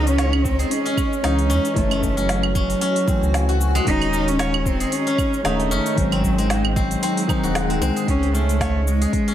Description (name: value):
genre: organic downtempo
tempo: 114 BPM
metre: 4/4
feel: swing 56% on 16ths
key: C# harmonic minor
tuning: A4 = 440 Hz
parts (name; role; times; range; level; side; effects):
- warm cello; melody; 0.0-9.3 s; F#3 to D#4; -24 LUFS; equal; digital delay
- felt-muted upright piano; accompaniment; 0.0-8.1 s; D#3 to G#4; -27 LUFS; left 3 dB; sidechain pumping, ping-pong delay
- granular cloud pad; sustained chords; 0.0-9.3 s; G#3 to C#6; -29 LUFS; equal; built-in reverb, sidechain pumping
- steel-string zither; arpeggios; 0.0-9.3 s; G#3 to C#5; -26 LUFS; left 1 dB; ping-pong delay
- warm sub bass; bass; 0.0-9.1 s; D#1 to E2; -22 LUFS; right 1 dB; sidechain pumping
- organic electronic drum kit; drums; 0.1-9.3 s; claves, hi-hat, shaker, snare drum; -28 LUFS; right 1 dB; overdrive
- electronic kick drum; drums; 0.4-9.2 s; none; -24 LUFS; right 1 dB; overdrive
room: light reverb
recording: none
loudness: -18 LUFS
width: side -11 dB against mid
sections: 0.0-8.1 A section; 8.1-9.3 B section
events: kick drops out 7.6-8.1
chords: 0.0 C#m; 1.8 F#m7; 3.9 D#m7b5; 6.0 G#7; 8.1 C#5